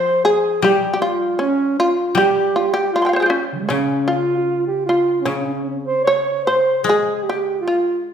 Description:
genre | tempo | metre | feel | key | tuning
japanese traditional | 77 BPM | 4/4 | rubato | unclear | A4 = 440 Hz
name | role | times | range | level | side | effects
shamisen | melody | 0.0-8.0 s | Db4 to C6 | -20 LUFS | equal | none
mellow alto saxophone | second line | 0.0-8.0 s | Db3 to Db5 | -18 LUFS | right 2 dB | none
koto | accompaniment | 0.0-8.1 s | Db3 to Ab3 | -24 LUFS | left 4 dB | none
room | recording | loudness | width
moderate recital hall reverb, RT60 1.4 s | recorded in a church or concert hall | -16 LUFS | side -8 dB against mid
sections
0.0-8.1 A section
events
none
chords
none

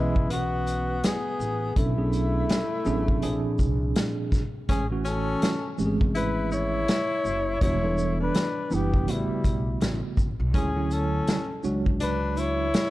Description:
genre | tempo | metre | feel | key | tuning
hip hop, jazz-hop | 82 BPM | 4/4 | swing 60% on 16ths | unclear | A4 = 440 Hz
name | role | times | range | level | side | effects
breathy flugelhorn | melody | 0.0-12.9 s | E4 to C#5 | -31 LUFS | left 1 dB | none
breathy tenor saxophone | second line | 0.0-12.9 s | G3 to E4 | -32 LUFS | left 3 dB | none
mellow tine electric piano | accompaniment | 0.0-12.7 s | A#2 to D#5 | -29 LUFS | right 2 dB | medium stereo tremolo
upright bass | bass | 0.0-12.7 s | E1 to D2 | -29 LUFS | equal | none
vintage drum kit | drums | 0.2-12.9 s | hi-hat, kick drum, shaker, snare drum | -27 LUFS | equal | none
room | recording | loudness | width
light reverb, small room ambience | dark, warm production | -23 LUFS | side -17 dB against mid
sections
0.0-12.9 A section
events
none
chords
0.0 C#m9; 1.8 Bm9; 3.2 A#9; 4.7 Amaj7; 7.6 Em9; 9.1 A13; 10.5 Dmaj9#11

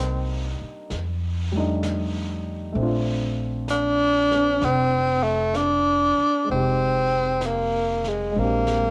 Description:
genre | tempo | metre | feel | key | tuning
jazz ballad | 64 BPM | 4/4 | swing 67% on 8ths | Bb major | A4 = 436 Hz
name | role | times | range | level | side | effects
breathy tenor saxophone | melody | 0.0-8.9 s | Ab3 to D4 | -23 LUFS | equal | cassette tape
dark grand piano | accompaniment | 0.0-8.9 s | G3 to G4 | -31 LUFS | equal | cassette tape
upright bass | bass | 0.0-8.9 s | F1 to F2 | -30 LUFS | equal | none
jazz brush drum kit | drums | 0.9-8.9 s | brushed snare drum, hi-hat, snare drum | -41 LUFS | equal | cassette tape
room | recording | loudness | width
light reverb | home recording on cassette | -23 LUFS | mono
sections
0.0-8.9 A section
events
drum fill 8.3-8.9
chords
0.0 Cm7; 0.9 F13; 2.7 Bbmaj9; 6.5 Fm7; 8.3 Bb13

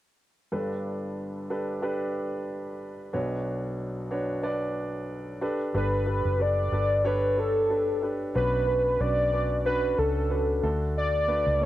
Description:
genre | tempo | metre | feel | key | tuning
pop | 92 BPM | 4/4 | swing 56% on 16ths | unclear | A4 = 442 Hz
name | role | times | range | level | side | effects
warm concert grand piano | accompaniment | 0.5-11.7 s | G1 to D5 | -30 LUFS | equal | none
vintage muted fingered electric bass | bass | 5.7-11.7 s | F#1 to D2 | -29 LUFS | equal | none
warm velvety synth lead | melody | 5.8-11.7 s | A4 to D5 | -25 LUFS | equal | chorus, cassette tape
room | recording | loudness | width
light reverb | home recording on cassette | -25 LUFS | side -14 dB against mid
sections
0.5-5.8 A section; 5.8-11.7 B section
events
none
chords
0.5 Gadd9; 3.1 Bmadd9; 5.4 Gadd9; 8.4 Bmadd9; 10.6 D

